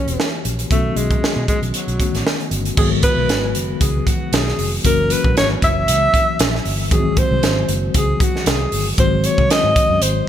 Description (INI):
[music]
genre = polished 1980s jazz-funk pop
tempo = 116 BPM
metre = 4/4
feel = swing 54% on 16ths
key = unclear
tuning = A4 = 441 Hz
[part]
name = breathy alto saxophone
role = melody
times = 0.0-10.3 s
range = F#3 to E5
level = -20 LUFS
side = equal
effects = none
[part]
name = mellow tine electric piano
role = accompaniment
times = 0.0-10.3 s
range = D#3 to G4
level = -23 LUFS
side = left 4 dB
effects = medium stereo tremolo, wide subtle chorus
[part]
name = vintage muted fingered electric bass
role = bass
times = 0.1-10.2 s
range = E1 to B2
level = -22 LUFS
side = equal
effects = none
[part]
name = crisp fusion drum kit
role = drums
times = 0.1-10.1 s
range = crash cymbal, hi-hat, kick drum, snare drum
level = -18 LUFS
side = right 1 dB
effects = gated reverb
[sound]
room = light reverb, small room ambience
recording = bright 1980s-style digital production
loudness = -15 LUFS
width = side -10 dB against mid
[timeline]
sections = 0.0-2.8 A section; 2.8-10.3 B section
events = none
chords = 0.0 F#7b9; 0.7 B9; 2.8 G#m7; 4.8 F#7; 6.9 G#7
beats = 0.19 | 0.70 1.22 1.74 2.26 | 2.78 3.29 3.81 4.33 | 4.85 5.36 5.88 6.40 | 6.92 7.43 7.95 8.47 | 8.98 9.50 10.02